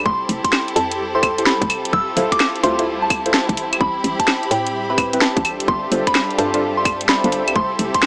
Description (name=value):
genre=UK garage, two-step garage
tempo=128 BPM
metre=4/4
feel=swing 66% on 16ths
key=unclear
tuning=A4 = 440 Hz
part: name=clear studio violin section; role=sustained chords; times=0.0-8.1 s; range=C4 to B5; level=-26 LUFS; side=equal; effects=sidechain pumping
part: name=hollow knocking FM bass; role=bass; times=0.0-7.9 s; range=D1 to A2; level=-24 LUFS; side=equal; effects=none
part: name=granular cloud pad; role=texture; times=0.0-8.1 s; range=G4 to E5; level=-28 LUFS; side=equal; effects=built-in reverb, sidechain pumping
part: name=soft synth bell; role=melody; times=0.1-8.1 s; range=G5 to E6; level=-21 LUFS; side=equal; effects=chorus, dub echo
part: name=electronic kick drum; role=drums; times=0.1-8.0 s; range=none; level=-23 LUFS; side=equal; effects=overdrive
part: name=garage drum kit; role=drums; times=0.3-8.1 s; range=claves, finger snaps, hi-hat, snare drum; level=-18 LUFS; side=equal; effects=overdrive
part: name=deep mellow chord stab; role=stabs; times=1.1-7.3 s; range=C4 to C5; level=-22 LUFS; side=equal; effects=chorus
room=light reverb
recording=small speaker sound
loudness=-15 LUFS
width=side -30 dB against mid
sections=0.0-8.1 A section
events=none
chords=0.1 Fmaj9; 1.7 Dm9; 3.8 Am9; 5.4 G9sus4; 7.6 Fmaj9